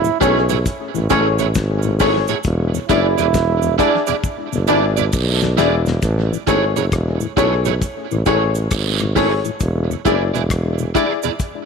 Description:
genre	roots reggae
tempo	67 BPM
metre	4/4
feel	swing 64% on 16ths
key	A major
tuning	A4 = 440 Hz
part	bright trombone	second line	0.0-4.9 s	C#4 to E4	-22 LUFS	right 12 dB	tape echo
part	mellow tonewheel organ	accompaniment	0.0-11.3 s	E2 to G#4	-26 LUFS	left 10 dB	overdrive, chorus vibrato, slow rotary speaker, tape echo
part	warm tuba	bass	0.0-10.9 s	E1 to B1	-19 LUFS	equal	none
part	cabasa and guiro	percussion	0.0-11.7 s	none	-28 LUFS	right 14 dB	none
part	electric guitar at the edge of break-up	accompaniment	0.2-11.3 s	E4 to D5	-22 LUFS	right 13 dB	ensemble chorus, tape echo
part	clear upright piano	stabs	0.2-11.2 s	E4 to D5	-22 LUFS	left 11 dB	none
part	damped 70s drum kit	drums	0.2-11.7 s	hi-hat, kick drum, rim click, snare drum	-23 LUFS	left 2 dB	tape echo
room	light reverb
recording	1960s-style stereo with parts hard left and right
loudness	-15 LUFS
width	side -5 dB against mid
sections	0.0-6.0 A section; 6.0-11.7 B section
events	drum fill 4.2-6.0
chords	0.0 Amaj7; 2.4 E7; 6.0 Amaj7; 9.6 E7

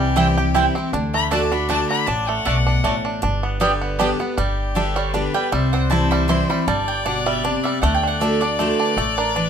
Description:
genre	bluegrass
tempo	157 BPM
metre	3/4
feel	swing 54% on 8ths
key	G major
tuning	A4 = 441 Hz
part	bluegrass banjo	melody	0.0-9.5 s	D3 to G4	-24 LUFS	right 4 dB	none
part	clear fiddle	second line	0.0-9.5 s	G4 to B5	-25 LUFS	left 6 dB	none
part	picked steel-string acoustic guitar	accompaniment	0.0-9.5 s	G2 to G4	-23 LUFS	left 1 dB	none
part	upright bass	bass	0.0-9.5 s	G1 to D2	-23 LUFS	equal	none
part	mandolin	stabs	0.2-9.5 s	A3 to C6	-24 LUFS	right 3 dB	none
room	moderate studio reverb, RT60 0.6 s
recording	minimal, uncompressed stereo recording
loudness	-17 LUFS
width	side -8 dB against mid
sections	0.0-4.4 A section; 4.4-9.5 A section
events	fiddle solo 0.0-4.4; mandolin solo 4.4-9.5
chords	0.0 C; 0.9 D; 3.2 G; 5.5 C; 6.7 G; 7.8 D

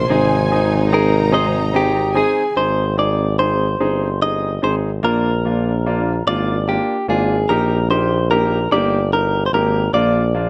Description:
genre	six-eight pop ballad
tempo	49 BPM (dotted quarters)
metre	6/8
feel	straight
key	unclear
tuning	A4 = 440 Hz
part	direct-recorded clean electric guitar	melody	0.0-10.5 s	G4 to Eb5	-22 LUFS	equal	none
part	warm studio violin section	second line	0.0-2.5 s	Ab5 to Bb5	-28 LUFS	equal	none
part	warm studio string section	sustained chords	0.0-2.5 s	C3 to Eb4	-28 LUFS	equal	none
part	warm tuba	bass	0.0-10.5 s	G1 to Bb1	-22 LUFS	equal	none
part	clear concert grand piano	accompaniment	0.1-10.5 s	Bb3 to Ab4	-24 LUFS	equal	none
room	small room ambience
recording	dark, warm production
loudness	-17 LUFS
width	mono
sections	0.0-2.6 A section; 2.6-10.5 B section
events	none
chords	0.1 Ab; 5.0 Bb; 7.5 Eb/Bb; 9.9 Bb

